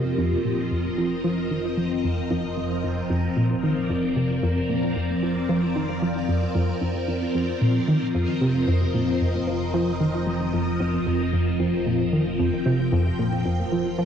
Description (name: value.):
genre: ambient, sequencer-driven space music.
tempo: 113 BPM.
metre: 4/4.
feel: straight.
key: unclear.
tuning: A4 = 439 Hz.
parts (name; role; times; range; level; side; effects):
phased string machine; sustained chords; 0.0-14.1 s; F3 to G5; -25 LUFS; left 1 dB; ensemble chorus, phaser, cassette tape.
tight sequenced synth; riff; 0.0-14.1 s; F2 to F3; -24 LUFS; equal; chorus, cassette tape, analog delay.
fat analog bass; bass; 0.0-14.1 s; F1; -35 LUFS; equal; none.
room: wet studio reverb, RT60 0.6 s.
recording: home recording on cassette.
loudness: -21 LUFS.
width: side -8 dB against mid.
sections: 0.0-14.1 A section.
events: filter sweep on synth arpeggio sound 0.0-14.1.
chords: 0.0 F7sus4.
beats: 0.45 | 0.98 1.51 2.04 2.57 | 3.10 3.63 4.17 4.70 | 5.23 5.76 6.29 6.82 | 7.35 7.88 8.41 8.94 | 9.47 10.01 10.54 11.07 | 11.60 12.13 12.66 13.19 | 13.72.